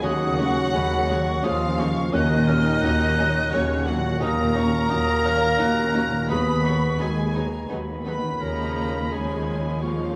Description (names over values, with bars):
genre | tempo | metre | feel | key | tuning
cinematic, emotional film score for orchestra | 86 BPM | 3/4 | rubato | Eb minor | A4 = 441 Hz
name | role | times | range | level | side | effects
rich symphonic violin section | melody | 0.0-10.2 s | Db5 to Cb6 | -32 LUFS | equal | none
clear clarinet | second line | 0.0-10.2 s | Db4 to Cb5 | -32 LUFS | equal | none
silver concert flute | second line | 0.0-10.2 s | Bb5 to Gb6 | -32 LUFS | equal | none
warm symphonic violin section | second line | 0.0-10.2 s | Cb4 to Eb4 | -36 LUFS | equal | none
dark grand piano | accompaniment | 0.0-10.2 s | Eb2 to Db5 | -31 LUFS | equal | none
warm studio viola section | accompaniment | 0.0-10.2 s | Db3 to Bb3 | -36 LUFS | equal | none
mellow French horn section | sustained chords | 0.0-10.2 s | Db3 to Cb4 | -32 LUFS | equal | none
concert harp | arpeggios | 0.0-10.2 s | Eb3 to Bb4 | -38 LUFS | equal | none
warm symphonic cello section | bass | 0.0-10.2 s | Eb2 | -32 LUFS | equal | none
warm symphonic double bass section | bass | 0.0-10.2 s | Eb2 | -31 LUFS | equal | none
room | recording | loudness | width
wet scoring stage reverb, RT60 1.8 s | none | -23 LUFS | mono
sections
0.0-10.2 A section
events
none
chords
0.0 Db/Eb; 2.1 Ebm7; 6.3 Abm7/Eb; 8.4 Db/Eb